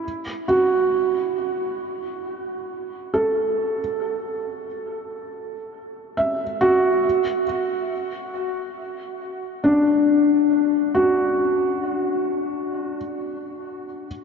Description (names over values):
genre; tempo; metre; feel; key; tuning
ambient; free time; none; none; unclear; A4 = 440 Hz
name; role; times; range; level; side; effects
felt-muted upright piano; solo; 0.0-14.2 s; D4 to E5; -20 LUFS; equal; diffuse ambient delay
room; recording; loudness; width
wet huge ambient reverb, RT60 7.5 s; dark, warm production, nothing above 7.9 kHz; -20 LUFS; side -6 dB against mid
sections
0.0-14.1 A section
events
none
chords
0.0 F#m7; 7.0 D